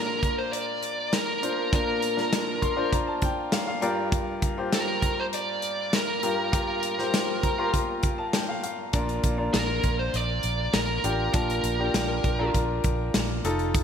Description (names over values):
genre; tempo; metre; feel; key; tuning
piano-driven pop; 100 BPM; 4/4; straight; Bb major; A4 = 440 Hz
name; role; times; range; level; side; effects
bluesy overdriven lead guitar; melody; 0.0-12.5 s; Bb4 to D5; -28 LUFS; right 1 dB; distortion
bright upright piano; accompaniment; 0.0-13.8 s; G2 to C6; -29 LUFS; left 2 dB; none
modern studio drum kit; drums; 0.2-13.8 s; hi-hat, kick drum, snare drum; -28 LUFS; equal; gated reverb
vintage muted fingered electric bass; bass; 8.9-13.8 s; F1 to Bb1; -30 LUFS; right 1 dB; none
room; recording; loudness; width
moderate lush hall reverb, RT60 2.1 s; bright 1980s-style digital production; -24 LUFS; side -8 dB against mid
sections
0.0-13.8 A section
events
upright piano fill 2.3-4.1, 7.1-8.9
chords
0.0 Bb; 3.8 Gm7; 8.9 Bb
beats
0.53 1.13 | 1.73 2.33 2.93 3.53 | 4.13 4.73 5.33 5.93 | 6.53 7.13 7.74 8.34 | 8.94 9.54 10.14 10.74 | 11.34 11.94 12.54 13.14 | 13.74